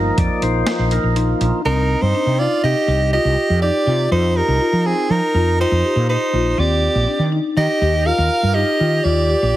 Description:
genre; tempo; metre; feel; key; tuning
progressive instrumental, band music in an uneven meter; 122 BPM; 5/4; straight; unclear; A4 = 440 Hz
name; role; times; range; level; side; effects
percussive tonewheel organ; accompaniment; 0.0-1.6 s; F3 to D5; -21 LUFS; equal; slow rotary speaker
marimba with soft mallets; arpeggios; 0.0-9.6 s; C4 to G4; -23 LUFS; left 4 dB; none
woody fretless electric bass; bass; 0.0-9.5 s; Bb1 to F3; -18 LUFS; equal; analog chorus
boom bap sampler-style drum kit; drums; 0.2-1.5 s; hi-hat, kick drum, snare drum; -24 LUFS; equal; none
clear soprano saxophone; melody; 1.7-9.6 s; Ab4 to F5; -19 LUFS; right 2 dB; none
clear alto saxophone; second line; 1.7-9.6 s; C4 to Bb4; -24 LUFS; right 3 dB; none
room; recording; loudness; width
light reverb, studio reverb; heavily compressed radio sound; -15 LUFS; side -14 dB against mid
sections
0.0-1.7 A section; 1.7-9.6 B section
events
tonewheel organ solo 0.0-1.7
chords
0.0 Bbsus4; 1.7 Cm; 4.1 F9sus4; 6.6 Ebmaj7

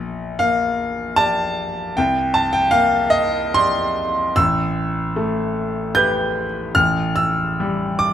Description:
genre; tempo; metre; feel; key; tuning
classical, impressionist solo piano; 68-83 BPM; 3/4; rubato; unclear; A4 = 441 Hz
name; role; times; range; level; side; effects
clear baby grand piano; solo; 0.0-8.1 s; A1 to G6; -17 LUFS; equal; none
room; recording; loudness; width
light reverb; close, detailed microphones; -17 LUFS; side -10 dB against mid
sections
0.0-8.1 A section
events
none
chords
0.0 Bb6; 2.0 Csus2; 4.4 Asus2; 6.8 A7(no3)

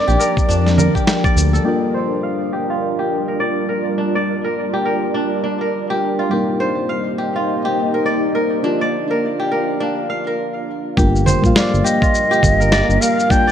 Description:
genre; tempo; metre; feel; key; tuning
organic downtempo; 103 BPM; 4/4; swing 60% on 16ths; G minor; A4 = 440 Hz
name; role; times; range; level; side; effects
bright bansuri; melody; 0.0-1.1, 11.6-13.5 s; D5 to G5; -18 LUFS; equal; digital delay
ethereal airy pad; sustained chords; 0.0-13.5 s; F3 to F5; -22 LUFS; right 1 dB; ensemble chorus, built-in reverb, sidechain pumping
kora; arpeggios; 0.0-13.5 s; D4 to F5; -21 LUFS; equal; low-pass filter, digital delay
bronze singing bowl; texture; 0.0-10.4 s; Bb3 to Bb4; -33 LUFS; left 4 dB; none
smooth synth bass; bass; 0.1-1.6, 11.0-13.0 s; G1 to F2; -16 LUFS; equal; none
electronic shaker, snare drum and congas; drums; 0.1-1.6, 11.0-13.5 s; none; -20 LUFS; right 1 dB; none
electronic kick drum; drums; 0.4-1.3, 11.0-13.4 s; none; -17 LUFS; equal; none
muted felt-like synth keys; accompaniment; 1.6-13.5 s; G3 to F5; -23 LUFS; left 1 dB; chorus, sidechain pumping, digital delay
udu; percussion; 11.3-11.4 s; none; -26 LUFS; left 1 dB; none
room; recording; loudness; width
moderate lush hall reverb, RT60 2.3 s; dark, warm production; -15 LUFS; side -9 dB against mid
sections
0.0-1.7 A section; 1.7-11.0 B section; 11.0-13.5 C section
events
filter sweep on kora 1.7-11.0; filter sweep on ambient pad 1.7-11.0; stop 10.4-11.0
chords
0.0 Bb; 1.7 Gm7; 6.3 Cm7; 8.6 Bb; 11.0 Gm7

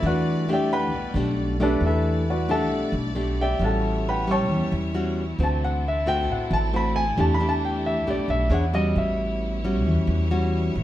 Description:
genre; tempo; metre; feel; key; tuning
bossa nova; 134 BPM; 4/4; straight; E minor; A4 = 435 Hz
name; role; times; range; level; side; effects
warm concert grand piano; melody; 0.0-10.3 s; D4 to C#6; -26 LUFS; equal; none
nylon-string guitar; accompaniment; 0.0-10.8 s; A2 to C#5; -25 LUFS; left 1 dB; none
clear studio string section; sustained chords; 0.0-10.8 s; G3 to D5; -35 LUFS; equal; none
upright bass; bass; 0.0-10.8 s; A1 to E2; -26 LUFS; equal; none
room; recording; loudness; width
wet studio reverb, RT60 0.7 s; heard from further back in the room; -21 LUFS; side -13 dB against mid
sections
0.0-1.8 A section; 1.8-10.8 A section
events
grand piano solo 0.0-10.8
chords
0.0 Em11; 3.6 A13; 5.4 D7; 7.2 Em7; 8.5 E13; 9.0 A13

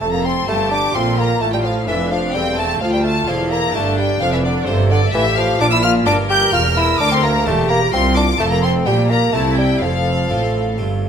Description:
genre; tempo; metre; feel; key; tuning
classical, baroque-style concerto movement with solo episodes; 129 BPM; 3/4; straight; F major; A4 = 440 Hz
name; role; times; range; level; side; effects
rich chamber violin section; melody; 0.0-10.8 s; C5 to G6; -24 LUFS; left 4 dB; none
warm bassoon; melody; 0.0-10.8 s; C3 to G4; -20 LUFS; left 2 dB; none
rich chamber violin section; second line; 0.0-10.8 s; C5 to G6; -22 LUFS; equal; none
harpsichord; accompaniment; 0.0-11.1 s; C2 to G4; -27 LUFS; right 1 dB; none
warm studio viola section; accompaniment; 0.0-11.1 s; C4 to Bb4; -24 LUFS; right 1 dB; none
rich chamber cello section; bass; 0.0-11.1 s; C2 to C3; -21 LUFS; right 1 dB; none
rich chamber double bass section; bass; 0.0-11.1 s; E1 to D2; -22 LUFS; right 2 dB; none
room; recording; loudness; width
moderate recital hall reverb, RT60 1.6 s; none; -14 LUFS; side -7 dB against mid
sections
0.0-11.1 A section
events
none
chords
0.0 F; 2.8 Dm; 4.2 Dm/F; 5.6 Bb; 8.4 F; 8.9 Gm/Bb; 9.3 C; 9.8 F

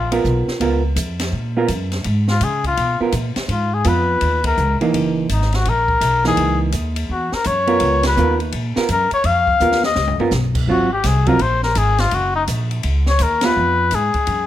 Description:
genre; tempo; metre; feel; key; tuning
jazz, small-group swing and bop; 167 BPM; 4/4; swing 64% on 8ths; Db mixolydian; A4 = 440 Hz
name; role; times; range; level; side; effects
trumpet with cup mute; melody; 0.0-0.1, 2.3-14.5 s; Eb4 to F5; -18 LUFS; left 4 dB; none
upright bass; bass; 0.0-14.5 s; Gb1 to Db3; -20 LUFS; equal; none
hollow-body jazz guitar; accompaniment; 0.1-13.9 s; Fb3 to Bb4; -20 LUFS; right 4 dB; none
open jazz drum kit; drums; 0.1-14.4 s; crash cymbal, hi-hat, kick drum, ride cymbal, snare drum, toms; -26 LUFS; left 1 dB; none
room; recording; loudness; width
light reverb; none; -15 LUFS; side -12 dB against mid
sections
0.0-14.5 A section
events
band accent 4.4, 8.0, 13.4; drum fill 9.6-10.3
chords
0.0 Db13; 4.9 Gb13; 7.8 Db13; 10.7 Ab13; 12.1 Gb6; 13.6 Fdim

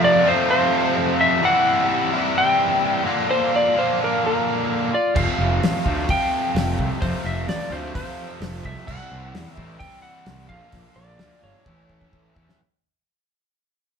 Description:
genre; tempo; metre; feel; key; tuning
classic rock; 129 BPM; 4/4; straight; unclear; A4 = 441 Hz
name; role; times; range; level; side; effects
electric slide guitar; melody; 0.0-12.3 s; Bb4 to G5; -22 LUFS; left 1 dB; none
distorted electric guitar; riff; 0.0-12.6 s; F2 to F4; -22 LUFS; equal; overdrive
fuzz picked electric bass; bass; 5.2-12.5 s; F1 to E2; -27 LUFS; right 1 dB; overdrive
damped 70s drum kit; drums; 5.2-12.6 s; crash cymbal, hi-hat, kick drum, snare drum; -26 LUFS; left 1 dB; none
room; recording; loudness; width
moderate studio reverb, RT60 0.7 s; band playing live in one room; -18 LUFS; side -6 dB against mid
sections
0.0-12.6 A section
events
fade-out 0.0-12.6; drum fill 11.7-12.6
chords
0.0 F; 1.4 C; 3.1 Bb; 5.2 Fadd9; 8.9 C; 10.5 Bb; 11.7 A

